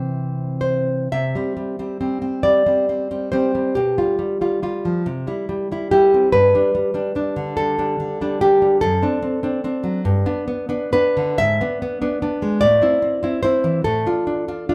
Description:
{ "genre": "romantic piece for solo classical guitar", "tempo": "37-50 BPM (dotted quarters)", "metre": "6/8", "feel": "rubato", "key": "C major, A minor from 11.4 s", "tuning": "A4 = 440 Hz", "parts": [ { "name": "nylon-string guitar", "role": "solo", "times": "0.0-14.7 s", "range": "F#2 to E5", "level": "-20 LUFS", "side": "equal", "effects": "none" } ], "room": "moderate large studio reverb, RT60 0.9 s", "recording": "band playing live in one room", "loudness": "-20 LUFS", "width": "mono", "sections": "0.0-1.1 A section; 1.1-14.7 B section", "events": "none", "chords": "0.0 C; 3.8 G7/B; 5.1 C; 6.3 G; 8.8 D7/F#; 10.0 G; 11.4 E7/G#; 12.6 Am; 13.9 Dm/A", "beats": "| 1.12 2.44 | 3.77 5.06 | 6.34 7.58 | 8.83 10.04 | 11.39 12.62 | 13.86" }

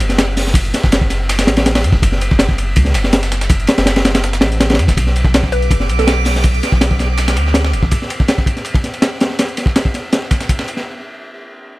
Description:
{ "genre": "drum and bass, jungle", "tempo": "163 BPM", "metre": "4/4", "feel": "straight", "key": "B minor", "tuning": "A4 = 440 Hz", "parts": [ { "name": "soft dub sub bass", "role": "bass", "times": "0.0-7.9 s", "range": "E1 to F#2", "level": "-16 LUFS", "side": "equal", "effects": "none" }, { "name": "crunchy breakbeat drum kit", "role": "drums", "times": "0.0-10.9 s", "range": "hi-hat, kick drum, ride cymbal, snare drum", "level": "-14 LUFS", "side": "equal", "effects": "none" }, { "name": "dusty soul sampler-style drum kit", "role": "drums", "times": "0.0-10.9 s", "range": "hi-hat, snare drum", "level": "-26 LUFS", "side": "right 1 dB", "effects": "high-pass filter on hats, high-pass filter on snare" }, { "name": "drifting glass-harmonics texture", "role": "texture", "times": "5.2-7.9 s", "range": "D6", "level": "-25 LUFS", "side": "right 6 dB", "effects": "chorus, built-in reverb" }, { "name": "hollow square pluck", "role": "melody", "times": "5.5-6.3 s", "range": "A4 to B4", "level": "-24 LUFS", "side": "right 1 dB", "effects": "chorus, vintage 12-bit sampler grit, dub echo" } ], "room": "studio reverb", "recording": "none", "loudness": "-12 LUFS", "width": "side -20 dB against mid", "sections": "0.0-5.0 A section; 5.0-10.9 B section", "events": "drop 0.0-5.0", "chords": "0.0 F#m; 5.0 Bm", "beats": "0.19 | 0.56 0.92 1.29 1.66 | 2.03 2.40 2.76 3.13 | 3.50 3.87 4.24 4.60 | 4.97 5.34 5.71 6.08 | 6.44 6.81 7.18 7.55 | 7.92 8.29 8.65 9.02 | 9.39 9.76 10.12 10.49" }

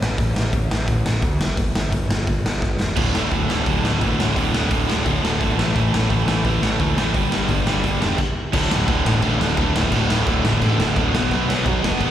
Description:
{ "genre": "punk rock", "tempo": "172 BPM", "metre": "4/4", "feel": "straight", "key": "D major", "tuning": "A4 = 442 Hz", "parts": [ { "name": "growling picked electric bass", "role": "bass", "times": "0.0-12.1 s", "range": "D1 to D2", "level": "-23 LUFS", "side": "equal", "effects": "overdrive" }, { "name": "raw garage drum kit", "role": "drums", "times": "0.0-12.1 s", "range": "crash cymbal, hi-hat, kick drum, snare drum", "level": "-22 LUFS", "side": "equal", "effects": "none" }, { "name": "overdriven electric guitar", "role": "riff", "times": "3.0-12.1 s", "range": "D2 to B3", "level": "-23 LUFS", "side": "right 11 dB", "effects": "slapback echo" }, { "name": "sludgy distorted guitar", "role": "riff", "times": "3.0-12.1 s", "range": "D2 to B3", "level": "-23 LUFS", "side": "left 8 dB", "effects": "overdrive" } ], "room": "little or no reverb", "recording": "live gig heard through the venue's PA, recital hall reverb", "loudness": "-17 LUFS", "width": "side -11 dB against mid", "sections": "0.0-8.5 A section; 8.5-12.1 B section", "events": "drum fill 2.6-3.0; stop 8.2-8.5", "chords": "0.0 N.C.; 3.0 D5; 5.6 A5; 7.1 G5; 8.5 D5; 11.1 B5", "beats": "| 0.18 0.53 0.88 1.23 | 1.58 1.93 2.27 2.62 | 2.97 3.32 3.67 4.02 | 4.37 4.71 5.06 5.41 | 5.76 6.11 6.45 6.80 | 7.15 7.50 7.84 8.19 | 8.54 8.88 9.23 9.58 | 9.93 10.27 10.62 10.96 | 11.31 11.66 12.00" }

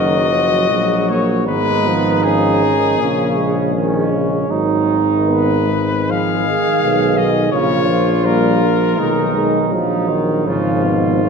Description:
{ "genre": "classical, hymn-like piece for brass band", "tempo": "80 BPM", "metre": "4/4", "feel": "uneven beats, rubato", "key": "unclear", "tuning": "A4 = 440 Hz", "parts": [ { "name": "mellow cornet", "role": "melody", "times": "0.0-11.3 s", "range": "G#4 to E#5", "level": "-19 LUFS", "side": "left 5 dB", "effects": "none" }, { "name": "warm flugelhorn", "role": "second line", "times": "0.0-11.3 s", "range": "C#4 to G#4", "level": "-21 LUFS", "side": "right 5 dB", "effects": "none" }, { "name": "warm euphonium", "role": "accompaniment", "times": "0.0-11.3 s", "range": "E#3 to C#4", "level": "-22 LUFS", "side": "left 1 dB", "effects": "none" }, { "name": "warm trombone", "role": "accompaniment", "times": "0.0-11.3 s", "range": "B2 to G#3", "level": "-22 LUFS", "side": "right 2 dB", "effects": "none" }, { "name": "warm tuba", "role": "bass", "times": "0.0-11.3 s", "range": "F#1 to B1", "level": "-18 LUFS", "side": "equal", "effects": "none" } ], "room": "wet scoring stage reverb, RT60 1.6 s", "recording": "heard from further back in the room", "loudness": "-13 LUFS", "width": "side -5 dB against mid", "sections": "0.0-11.3 A section", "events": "none", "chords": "0.0 F#; 1.5 C#7/G#; 3.0 A#m7; 4.5 G#m7; 7.5 A#m6; 9.0 G#m/B; 10.5 C#7/G#", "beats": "0.69 | 1.47 2.23 2.99 3.74 | 4.49 5.25 6.09 6.82 | 7.53 8.25 8.98 9.72 | 10.47 11.24" }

